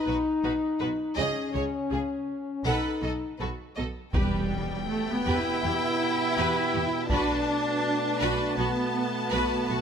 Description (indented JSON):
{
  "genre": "cinematic, epic orchestral film score",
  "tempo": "81 BPM",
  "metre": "4/4",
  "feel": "straight",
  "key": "E minor from 4.1 s",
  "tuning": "A4 = 440 Hz",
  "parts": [
    { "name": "rich chamber violin section", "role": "melody", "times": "0.0-9.8 s", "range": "F#4 to A5", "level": "-34 LUFS", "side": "left 4 dB", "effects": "none" },
    { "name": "bright studio violin section", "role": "second line", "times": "0.0-9.8 s", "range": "D#4 to D#5", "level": "-34 LUFS", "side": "left 1 dB", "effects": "none" },
    { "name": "rich symphonic viola section", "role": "accompaniment", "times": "0.0-9.8 s", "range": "F#4 to B4", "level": "-35 LUFS", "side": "right 2 dB", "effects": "none" },
    { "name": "mellow French horn section", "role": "sustained chords", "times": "0.0-9.8 s", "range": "C#4 to B4", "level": "-32 LUFS", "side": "left 4 dB", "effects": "none" },
    { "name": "rich symphonic cello section", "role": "bass", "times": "0.1-9.7 s", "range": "B2 to E4", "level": "-29 LUFS", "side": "right 1 dB", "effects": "none" },
    { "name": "rich symphonic double bass section", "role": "bass", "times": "0.1-9.8 s", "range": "B1 to E2", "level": "-34 LUFS", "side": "right 3 dB", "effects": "none" },
    { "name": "mellow trombone section", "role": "sustained chords", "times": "4.1-9.8 s", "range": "B2 to B3", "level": "-34 LUFS", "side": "right 4 dB", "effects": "none" },
    { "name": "taiko ensemble", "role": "drums", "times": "4.1-7.8 s", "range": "none", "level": "-31 LUFS", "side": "equal", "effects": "none" },
    { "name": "timpani", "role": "percussion", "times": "4.1-5.2 s", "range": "E2", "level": "-35 LUFS", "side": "equal", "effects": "none" },
    { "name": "impact", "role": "sound effects", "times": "4.1-7.1 s", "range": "none", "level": "-40 LUFS", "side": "equal", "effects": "none" }
  ],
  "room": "light reverb",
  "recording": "close, detailed microphones",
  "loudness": "-25 LUFS",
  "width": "side -7 dB against mid",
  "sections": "0.0-4.1 A section; 4.1-9.8 B section",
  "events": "impact 4.1-7.1",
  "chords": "0.0 B; 1.2 C#sus2; 2.7 B7; 4.1 Em; 7.1 Bm7"
}